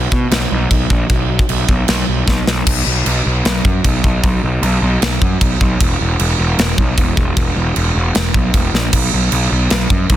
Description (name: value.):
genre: heavy metal.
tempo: 153 BPM.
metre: 4/4.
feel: straight.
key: unclear.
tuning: A4 = 440 Hz.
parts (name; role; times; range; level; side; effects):
fuzz picked electric bass; bass; 0.0-10.2 s; E1 to B2; -16 LUFS; equal; overdrive.
tight metal drum kit; drums; 0.1-10.2 s; china cymbal, crash cymbal, kick drum, snare drum; -15 LUFS; equal; none.
room: little or no reverb.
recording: dense, heavily limited modern master.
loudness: -12 LUFS.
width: side -12 dB against mid.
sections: 0.0-2.7 A section; 2.7-10.2 B section.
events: drum fill 2.3-2.7, 8.7.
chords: none.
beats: 0.32 0.71 | 1.10 1.49 1.89 2.28 | 2.67 3.06 3.46 3.85 | 4.24 4.63 5.02 5.41 | 5.80 6.20 6.59 6.98 | 7.37 7.76 8.15 8.54 | 8.93 9.32 9.71 10.10.